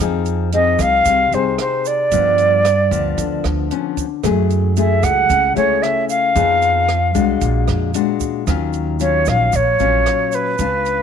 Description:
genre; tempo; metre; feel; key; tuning
bossa nova; 113 BPM; 4/4; straight; unclear; A4 = 440 Hz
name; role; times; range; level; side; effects
nylon-string guitar; accompaniment; 0.0-11.0 s; G2 to Ab4; -21 LUFS; left 12 dB; none
upright bass; bass; 0.0-11.0 s; Bb1 to G2; -20 LUFS; right 2 dB; none
egg shaker; percussion; 0.0-11.0 s; none; -34 LUFS; right 21 dB; none
compact cocktail drum kit; drums; 0.3-11.0 s; hi-hat, kick drum, rim click; -28 LUFS; right 7 dB; none
silver concert flute; melody; 0.5-11.0 s; Cb5 to Gb5; -15 LUFS; right 1 dB; none
room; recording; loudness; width
light reverb, small room ambience; 1960s-style stereo with parts hard left and right; -14 LUFS; side -7 dB against mid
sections
0.0-11.0 A section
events
none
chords
0.0 Fm7; 2.1 G7#11; 4.2 Gbm9; 6.4 Fm7b5; 7.4 Bb7b13; 8.5 Ebm9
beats
0.52 1.05 1.58 | 2.12 2.65 3.18 3.71 | 4.24 4.77 5.30 5.83 | 6.36 6.89 7.42 7.95 | 8.47 9.00 9.53 10.06 | 10.59

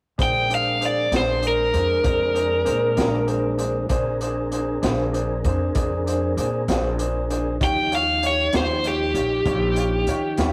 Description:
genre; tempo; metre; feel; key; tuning
slow blues; 65 BPM (dotted quarters); 12/8; straight; Bb mixolydian; A4 = 441 Hz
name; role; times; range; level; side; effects
overdriven electric guitar; melody; 0.2-10.5 s; G4 to G5; -23 LUFS; equal; tape echo
bright grand piano; accompaniment; 0.2-10.5 s; D4 to Db5; -30 LUFS; equal; none
tonewheel organ; sustained chords; 0.2-10.5 s; F3 to Bb4; -31 LUFS; equal; chorus vibrato, slow rotary speaker
upright bass; bass; 0.2-10.5 s; Bb1 to Eb3; -29 LUFS; equal; none
crunchy breakbeat drum kit; drums; 0.2-10.5 s; hi-hat, kick drum, snare drum; -29 LUFS; equal; none
room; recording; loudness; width
light reverb; rough rehearsal-room recording; -22 LUFS; mono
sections
0.2-10.5 A section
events
none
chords
0.2 Bb9; 7.6 Eb9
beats
| 0.20 1.12 2.05 2.98 | 3.90 4.83 5.75 6.68 | 7.61 8.53 9.46 10.38

